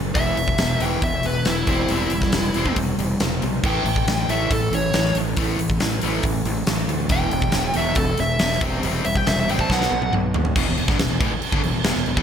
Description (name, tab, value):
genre	hard rock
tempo	139 BPM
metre	4/4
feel	straight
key	E minor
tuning	A4 = 440 Hz
part	cranked stack guitar	riff	0.0-12.2 s	E2 to C4	-27 LUFS	left 10 dB	overdrive
part	overdriven semi-hollow guitar	riff	0.0-12.2 s	E2 to C4	-27 LUFS	right 9 dB	lush chorus
part	fuzz fingered electric bass	bass	0.0-12.2 s	E1 to E2	-26 LUFS	equal	overdrive
part	dark smooth lead guitar	melody	0.2-10.1 s	E4 to A5	-24 LUFS	left 1 dB	overdrive
part	huge arena drum kit	drums	0.2-12.2 s	crash cymbal, hi-hat, kick drum, snare drum, toms	-23 LUFS	equal	none
room	light reverb, small room ambience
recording	bright 1980s-style digital production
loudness	-18 LUFS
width	side -8 dB against mid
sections	0.0-10.6 A section; 10.6-12.2 B section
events	lead electric guitar solo 0.0-10.6; drum fill 9.7-10.6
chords	0.2 E5; 1.7 C/E; 3.6 A5; 7.1 Em; 8.6 C/E; 9.7 B; 10.6 Em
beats	| 0.16 0.60 1.03 1.47 | 1.90 2.34 2.77 3.20 | 3.64 4.07 4.51 4.94 | 5.37 5.81 6.24 6.67 | 7.11 7.54 7.97 8.40 | 8.83 9.27 9.70 10.13 | 10.56 10.99 11.42 11.85